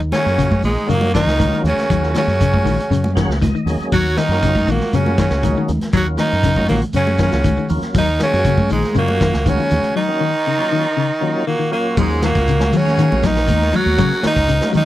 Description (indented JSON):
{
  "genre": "afrobeat",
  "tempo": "119 BPM",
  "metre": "4/4",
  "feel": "straight",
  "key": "Eb minor",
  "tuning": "A4 = 441 Hz",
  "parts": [
    { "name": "fingered electric bass", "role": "bass", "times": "0.0-14.8 s", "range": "Bb1 to Eb3", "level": "-19 LUFS", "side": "equal", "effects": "none" },
    { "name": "shekere", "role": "percussion", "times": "0.0-14.8 s", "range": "none", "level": "-26 LUFS", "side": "right 2 dB", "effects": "none" },
    { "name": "raspy tenor saxophone", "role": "melody", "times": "0.1-14.8 s", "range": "Ab3 to Gb4", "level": "-19 LUFS", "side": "right 1 dB", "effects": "none" },
    { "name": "brilliant trumpet", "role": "second line", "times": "0.1-14.8 s", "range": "Eb4 to Db5", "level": "-29 LUFS", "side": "right 7 dB", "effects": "none" },
    { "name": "raspy baritone saxophone", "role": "second line", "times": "0.1-14.8 s", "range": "Ab2 to Gb3", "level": "-26 LUFS", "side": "right 2 dB", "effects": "none" },
    { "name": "clean electric guitar", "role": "arpeggios", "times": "0.1-14.8 s", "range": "Db3 to Gb3", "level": "-21 LUFS", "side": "left 6 dB", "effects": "none" },
    { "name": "vintage drum kit", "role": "drums", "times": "0.1-14.8 s", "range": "crash cymbal, hi-hat, kick drum, snare drum", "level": "-22 LUFS", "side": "equal", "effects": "none" },
    { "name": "congas", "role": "percussion", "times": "0.1-14.8 s", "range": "none", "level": "-24 LUFS", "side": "equal", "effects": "none" },
    { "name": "percussive tonewheel organ", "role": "accompaniment", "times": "0.2-14.7 s", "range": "Gb3 to Gb5", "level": "-24 LUFS", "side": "equal", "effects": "slow rotary speaker, overdrive, chorus vibrato" }
  ],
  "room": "little or no reverb",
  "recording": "dry, close 1970s-style studio recording",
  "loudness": "-14 LUFS",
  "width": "side -14 dB against mid",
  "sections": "0.0-12.0 A section; 12.0-14.8 B section",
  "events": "tonewheel organ fill 2.9-3.9; break 10.0-12.0",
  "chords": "0.0 Ebm7"
}